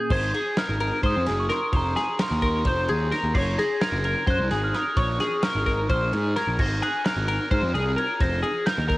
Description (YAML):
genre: math rock and midwest emo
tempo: 259 BPM (eighths)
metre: 7/8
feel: straight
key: Ab mixolydian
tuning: A4 = 440 Hz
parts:
  - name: glockenspiel with rubber mallets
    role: melody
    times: 0.0-9.0 s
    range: Bb5 to C7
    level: -28 LUFS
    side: right 2 dB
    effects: none
  - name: twelve-string electric guitar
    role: arpeggios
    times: 0.0-9.0 s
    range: Ab4 to Db5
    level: -27 LUFS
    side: left 2 dB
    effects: analog chorus, cassette tape, analog delay
  - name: fuzz picked electric bass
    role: bass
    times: 0.1-9.0 s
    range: F1 to Ab2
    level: -26 LUFS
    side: equal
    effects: overdrive
  - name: loose indie drum kit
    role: drums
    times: 0.1-9.0 s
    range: crash cymbal, kick drum, ride cymbal, snare drum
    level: -28 LUFS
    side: equal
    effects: cassette tape
room: small room reverb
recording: home recording on cassette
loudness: -21 LUFS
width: side -19 dB against mid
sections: 0.1-9.0 A section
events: none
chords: 0.1 Ab69; 1.7 Fm11; 3.3 Gbadd9(#11); 5.0 Bbm7; 6.6 Ab69; 8.2 Fm11